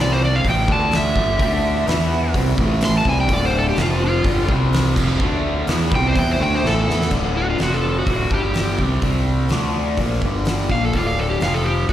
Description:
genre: blues rock power trio and southern rock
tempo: 126 BPM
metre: 4/4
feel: straight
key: unclear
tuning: A4 = 439 Hz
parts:
  - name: overdriven slide guitar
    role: melody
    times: 0.0-11.9 s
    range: F4 to C6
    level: -22 LUFS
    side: equal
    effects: slapback echo, digital delay
  - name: raw garage guitar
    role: riff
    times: 0.0-11.9 s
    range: D2 to E4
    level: -22 LUFS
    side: equal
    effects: overdrive, phaser, slapback echo
  - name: fuzz fingered electric bass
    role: bass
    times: 0.0-11.9 s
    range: D1 to E2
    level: -21 LUFS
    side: equal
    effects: overdrive
  - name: oversized low-tuned drum kit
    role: drums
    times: 0.4-11.9 s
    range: crash cymbal, hi-hat, kick drum, snare drum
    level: -23 LUFS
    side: equal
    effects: none
room: light reverb, small room ambience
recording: live gig heard through the venue's PA, recital hall reverb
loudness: -16 LUFS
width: side -12 dB against mid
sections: 0.0-7.1 A section; 7.1-11.9 B section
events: electric slide guitar solo 0.0-7.1; drum fill 6.6-7.1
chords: 0.0 C5; 0.5 A5; 0.7 D5; 1.2 Em7/G; 1.4 D5; 1.9 E5; 2.4 A5; 3.3 D5; 3.8 F5; 4.3 G5; 4.5 C5; 5.0 F5; 5.2 D5; 5.7 A5; 7.1 D5; 7.6 F5; 8.1 D; 8.3 G5; 8.8 C5; 9.5 D5; 10.0 G5; 10.9 D5; 11.4 F5

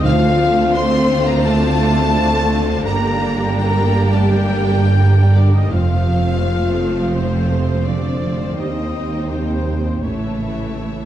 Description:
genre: cinematic, epic orchestral film score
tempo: 84 BPM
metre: 4/4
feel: straight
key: D phrygian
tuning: A4 = 440 Hz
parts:
  - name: rich symphonic violin section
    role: melody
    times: 0.0-11.1 s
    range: C5 to C6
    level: -28 LUFS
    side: left 4 dB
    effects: none
  - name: rich symphonic violin section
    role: second line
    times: 0.0-11.1 s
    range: A3 to G4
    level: -27 LUFS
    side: left 2 dB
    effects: none
  - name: rich symphonic viola section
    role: accompaniment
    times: 0.0-11.1 s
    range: D3 to A3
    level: -26 LUFS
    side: right 1 dB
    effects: none
  - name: clear trombone section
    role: sustained chords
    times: 0.0-11.1 s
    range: C3 to C4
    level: -26 LUFS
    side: right 3 dB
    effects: none
  - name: rich symphonic string section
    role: sustained chords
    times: 0.0-11.1 s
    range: G3 to A5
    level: -26 LUFS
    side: left 1 dB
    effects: none
  - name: mellow trumpet section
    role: stabs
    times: 0.0-11.1 s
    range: C5 to C6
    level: -25 LUFS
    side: left 1 dB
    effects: none
  - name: warm studio cello section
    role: bass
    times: 0.0-11.1 s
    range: D2 to A2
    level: -20 LUFS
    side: right 2 dB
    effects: none
  - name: timpani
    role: percussion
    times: 0.0-1.1 s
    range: D3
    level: -24 LUFS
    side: left 1 dB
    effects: none
  - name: mellow French horn section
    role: sustained chords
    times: 0.1-11.1 s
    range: C4 to C5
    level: -25 LUFS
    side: left 5 dB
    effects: none
  - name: rich symphonic double bass section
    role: bass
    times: 0.1-11.1 s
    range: F1 to Eb2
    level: -19 LUFS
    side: right 2 dB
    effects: none
room: wet recital hall reverb, RT60 1.5 s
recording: dark, warm production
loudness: -14 LUFS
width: side -11 dB against mid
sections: 0.0-11.1 A section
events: none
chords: 0.0 Dm7; 2.9 Gm; 5.7 F; 8.6 Cm/Eb; 10.0 A

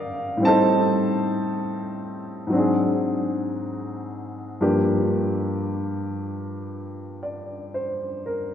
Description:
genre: jazz ballad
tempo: 57 BPM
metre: 4/4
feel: swing 67% on 8ths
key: unclear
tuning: A4 = 442 Hz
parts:
  - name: warm upright piano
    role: solo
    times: 0.0-8.5 s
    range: G2 to A5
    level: -22 LUFS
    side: equal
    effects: none
room: wet church reverb, RT60 2.9 s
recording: recorded in a church or concert hall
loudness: -21 LUFS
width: side -9 dB against mid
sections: 0.0-8.5 A section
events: none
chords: 0.4 Am7b5; 2.5 Ab7#11; 4.6 Gm7

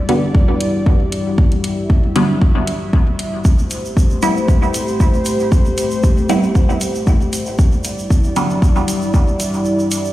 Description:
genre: dub techno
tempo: 116 BPM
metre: 4/4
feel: straight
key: A dorian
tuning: A4 = 435 Hz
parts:
  - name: dark analog pad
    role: sustained chords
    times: 0.0-10.1 s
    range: G3 to E5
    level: -20 LUFS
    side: left 1 dB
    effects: chorus, sidechain pumping
  - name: filtered dub chord stab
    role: stabs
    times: 0.1-8.5 s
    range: D3 to E4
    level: -21 LUFS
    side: right 1 dB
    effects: phaser, sidechain pumping, dub echo
  - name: electronic hi-hat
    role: drums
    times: 0.1-10.0 s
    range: none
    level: -27 LUFS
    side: left 1 dB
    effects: overdrive
  - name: electronic kick drum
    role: drums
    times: 0.3-9.2 s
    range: none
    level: -13 LUFS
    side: equal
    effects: overdrive
  - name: tube shaker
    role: percussion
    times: 3.4-10.1 s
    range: none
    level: -29 LUFS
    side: right 2 dB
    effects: none
room: light reverb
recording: played on a big sound system in a bare room, stone room reverb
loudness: -13 LUFS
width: side -15 dB against mid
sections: 0.0-10.1 A section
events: kick drops out 9.7-10.1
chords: 0.0 Em7; 3.4 Am7; 7.6 Em7

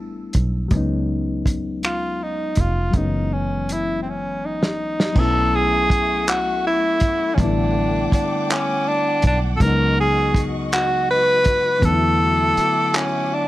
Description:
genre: slow six-eight R&B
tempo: 54 BPM (dotted quarters)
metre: 6/8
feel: straight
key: unclear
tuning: A4 = 440 Hz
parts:
  - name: reed electric piano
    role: accompaniment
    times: 0.0-13.5 s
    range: C#3 to E4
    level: -25 LUFS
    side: left 3 dB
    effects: overdrive
  - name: fingered electric bass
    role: bass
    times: 0.0-12.6 s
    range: E#1 to E2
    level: -23 LUFS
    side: equal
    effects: none
  - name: warm soul drum kit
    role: drums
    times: 0.3-13.1 s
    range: crash cymbal, finger snaps, handclaps, hi-hat, kick drum, snare drum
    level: -21 LUFS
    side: equal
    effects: none
  - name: breathy tenor saxophone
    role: melody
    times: 1.9-13.5 s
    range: B#3 to B4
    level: -20 LUFS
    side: equal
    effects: slapback echo
  - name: warm studio string section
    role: sustained chords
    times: 5.2-13.5 s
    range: A3 to D6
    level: -31 LUFS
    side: left 2 dB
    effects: none
room: light reverb, small room ambience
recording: none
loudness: -17 LUFS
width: side -16 dB against mid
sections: 0.0-5.2 A section; 5.2-13.5 B section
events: drum fill 4.0-5.2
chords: 0.0 A9sus4; 0.7 C#9sus4; 2.9 F#9sus4; 5.2 B9sus4; 7.4 A9sus4; 9.6 C#9sus4; 11.8 E9sus4

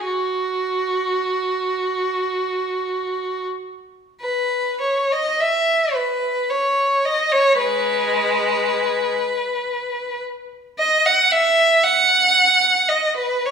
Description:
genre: classical, free, expressive piece for unaccompanied violin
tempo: 34-58 BPM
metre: 3/4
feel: rubato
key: unclear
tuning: A4 = 440 Hz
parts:
  - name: rich violin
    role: solo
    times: 0.0-13.5 s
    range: G#3 to F#5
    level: -17 LUFS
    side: equal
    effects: none
room: wet recital hall reverb, RT60 1.3 s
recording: minimal, uncompressed stereo recording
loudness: -17 LUFS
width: side -6 dB against mid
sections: 0.0-4.2 A section; 4.2-13.5 A section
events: none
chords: none

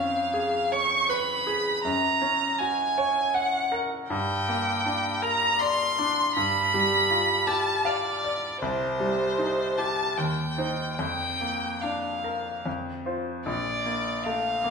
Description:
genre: classical, romantic duo for violin and grand piano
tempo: 72-82 BPM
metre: 3/4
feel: rubato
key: F# major, Bb major from 4.1 s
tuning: A4 = 440 Hz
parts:
  - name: rich violin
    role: melody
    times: 0.0-14.7 s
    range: C5 to C#6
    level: -25 LUFS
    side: equal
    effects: none
  - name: bright grand piano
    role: accompaniment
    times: 0.0-14.7 s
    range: Bb1 to F#5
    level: -28 LUFS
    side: equal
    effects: none
room: wet stone room reverb, RT60 1.2 s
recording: minimal, uncompressed stereo recording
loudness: -23 LUFS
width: side -5 dB against mid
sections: 0.0-13.5 A section; 13.5-14.7 B section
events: none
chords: 0.0 C#7/E#; 1.8 F#; 4.1 Gm; 6.4 G7; 8.6 Cm; 10.2 Cm/Eb; 11.0 Bb/F; 12.7 F5; 13.5 Bb

